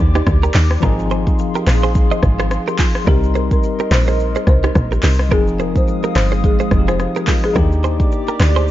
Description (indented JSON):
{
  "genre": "afrobeats",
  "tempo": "107 BPM",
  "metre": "4/4",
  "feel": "swing 58% on 16ths",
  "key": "Eb major",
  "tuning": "A4 = 441 Hz",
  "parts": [
    { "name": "bell-like tine electric piano", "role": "accompaniment", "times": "0.0-8.7 s", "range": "F3 to Bb4", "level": "-23 LUFS", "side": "left 4 dB", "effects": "medium stereo tremolo" },
    { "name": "hollow soft pad", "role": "sustained chords", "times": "0.0-8.7 s", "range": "Ab3 to Eb6", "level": "-26 LUFS", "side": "right 1 dB", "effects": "chorus" },
    { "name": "woody log drum bass", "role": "bass", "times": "0.0-8.7 s", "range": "F1 to Eb2", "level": "-16 LUFS", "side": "equal", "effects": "none" },
    { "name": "direct-recorded clean electric guitar", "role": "riff", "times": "0.2-8.7 s", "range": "Eb4 to Eb5", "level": "-24 LUFS", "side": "right 7 dB", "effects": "ping-pong delay" },
    { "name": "deep house drum kit", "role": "drums", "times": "0.2-8.7 s", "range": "handclaps, hi-hat, kick drum, rim click, shaker", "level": "-17 LUFS", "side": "equal", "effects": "none" },
    { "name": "folk marimba with medium mallets", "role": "melody", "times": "3.1-7.5 s", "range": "G4 to C5", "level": "-24 LUFS", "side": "left 1 dB", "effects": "ping-pong delay" }
  ],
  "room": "little or no reverb",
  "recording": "dark, warm production, nothing above 7.5 kHz",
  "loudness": "-13 LUFS",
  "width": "side -14 dB against mid",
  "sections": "0.0-8.7 A section",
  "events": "none",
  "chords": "0.0 Ebmaj7; 0.8 Ab6; 3.1 Cm7; 5.3 Fm7; 7.6 Ebmaj7"
}